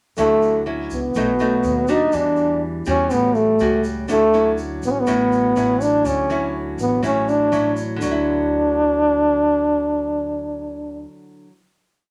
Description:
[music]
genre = bossa nova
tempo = 122 BPM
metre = 4/4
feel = straight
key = D major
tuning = A4 = 440 Hz
[part]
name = warm trombone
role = melody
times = 0.2-11.1 s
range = A3 to D#4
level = -20 LUFS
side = equal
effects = none
[part]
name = nylon-string guitar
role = accompaniment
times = 0.2-11.6 s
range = A2 to F#4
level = -27 LUFS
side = equal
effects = none
[part]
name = upright bass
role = bass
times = 0.2-11.0 s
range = A1 to E2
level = -33 LUFS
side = equal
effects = none
[part]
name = egg shaker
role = percussion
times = 0.2-8.1 s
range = none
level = -44 LUFS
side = equal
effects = none
[sound]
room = light reverb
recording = none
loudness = -19 LUFS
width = mono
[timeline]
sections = 0.2-8.0 A section; 8.0-11.9 final chord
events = none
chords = 0.2 Dmaj9; 1.1 B7; 2.1 Em9; 3.1 A6; 4.1 Dmaj9; 8.0 Dadd9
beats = | 0.17 0.66 1.15 1.64 | 2.13 2.62 3.11 3.60 | 4.09 4.58 5.07 5.56 | 6.05 6.54 7.03 7.52 | 8.01 8.50 8.99 9.48 | 9.97 10.46 10.95 11.44

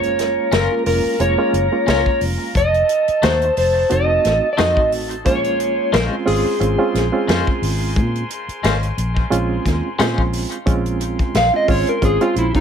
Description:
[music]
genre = straight-eighth soul blues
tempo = 89 BPM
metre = 4/4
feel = swing 55% on 16ths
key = Bb minor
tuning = A4 = 440 Hz
[part]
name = electric slide guitar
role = melody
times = 0.0-12.6 s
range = Eb4 to F5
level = -18 LUFS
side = equal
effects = plate reverb
[part]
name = barky reed electric piano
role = accompaniment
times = 0.0-12.6 s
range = Ab3 to Gb4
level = -22 LUFS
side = right 6 dB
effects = overdrive, fast tremolo, plate reverb
[part]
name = clear horn section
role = sustained chords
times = 0.0-12.6 s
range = A4 to C6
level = -30 LUFS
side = left 3 dB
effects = plate reverb
[part]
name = vintage muted fingered electric bass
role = bass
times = 0.0-12.5 s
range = F1 to Bb2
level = -22 LUFS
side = left 1 dB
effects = none
[part]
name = warm soul drum kit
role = drums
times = 0.0-12.6 s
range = hi-hat, kick drum, snare drum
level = -22 LUFS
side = left 1 dB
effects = none
[part]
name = twangy electric guitar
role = stabs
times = 0.5-10.2 s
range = Ab3 to C5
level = -26 LUFS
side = left 6 dB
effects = tremolo, plate reverb, tape echo
[sound]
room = light reverb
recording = none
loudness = -15 LUFS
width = side -7 dB against mid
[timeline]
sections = 0.0-10.7 A section; 10.7-12.6 B section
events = electric slide guitar solo 10.7-12.6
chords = 0.0 Gbmaj7; 2.5 F7b9; 5.3 Bbm9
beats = 0.52 1.20 1.87 | 2.55 3.23 3.90 4.58 | 5.25 5.93 6.61 7.28 | 7.96 8.64 9.31 9.99 | 10.67 11.35 12.02

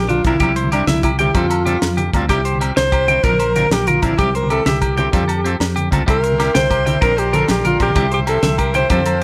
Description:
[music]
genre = highlife guitar band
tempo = 127 BPM (dotted quarters)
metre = 12/8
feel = straight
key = C mixolydian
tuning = A4 = 444 Hz
[part]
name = breathy alto saxophone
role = melody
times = 0.0-9.2 s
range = D4 to C5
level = -21 LUFS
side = equal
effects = tape echo
[part]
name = fingered electric bass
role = bass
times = 0.0-9.2 s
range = Bb1 to F2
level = -23 LUFS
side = equal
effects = none
[part]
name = clean electric guitar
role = arpeggios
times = 0.1-9.2 s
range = D4 to G5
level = -24 LUFS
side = equal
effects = tape echo
[part]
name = tight funk drum kit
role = drums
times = 0.1-9.1 s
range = hi-hat, kick drum, snare drum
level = -23 LUFS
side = equal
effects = none
[part]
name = congas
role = percussion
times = 0.1-9.1 s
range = none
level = -26 LUFS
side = equal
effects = none
[part]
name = clean electric guitar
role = accompaniment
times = 0.2-9.0 s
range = F3 to Bb4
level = -28 LUFS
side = equal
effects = subtle chorus
[part]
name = agogo bells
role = percussion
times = 0.3-9.2 s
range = none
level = -30 LUFS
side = equal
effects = none
[part]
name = combo organ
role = sustained chords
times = 6.1-9.2 s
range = D5 to C6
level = -31 LUFS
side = equal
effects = none
[sound]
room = light reverb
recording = none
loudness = -16 LUFS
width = mono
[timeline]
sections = 0.0-9.2 A section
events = drum fill 5.4-6.1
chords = 0.4 C; 1.4 Fadd9; 2.3 C; 3.2 Bbadd9; 4.2 C; 5.1 Fadd9; 6.1 C; 7.0 Bbadd9; 8.0 C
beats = | 0.41 0.88 1.36 1.83 | 2.30 2.77 3.25 3.72 | 4.19 4.66 5.13 5.61 | 6.08 6.55 7.02 7.49 | 7.96 8.43 8.90

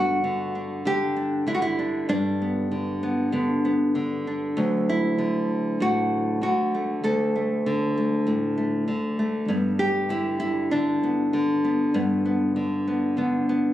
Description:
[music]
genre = folk, solo fingerstyle acoustic guitar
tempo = 98 BPM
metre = 4/4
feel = straight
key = unclear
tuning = A4 = 439 Hz
[part]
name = nylon-string guitar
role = solo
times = 0.0-13.7 s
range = D2 to A4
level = -22 LUFS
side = equal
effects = none
[sound]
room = light reverb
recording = recorded on a phone in the room, club reverb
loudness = -22 LUFS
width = side -13 dB against mid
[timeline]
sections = 0.0-13.7 A section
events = none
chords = 0.0 G; 4.6 Dadd9; 9.5 G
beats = 0.25 0.86 1.48 | 2.09 2.70 3.32 3.94 | 4.56 5.18 5.80 6.42 | 7.04 7.65 8.26 8.88 | 9.49 10.10 10.71 11.32 | 11.93 12.55 13.17

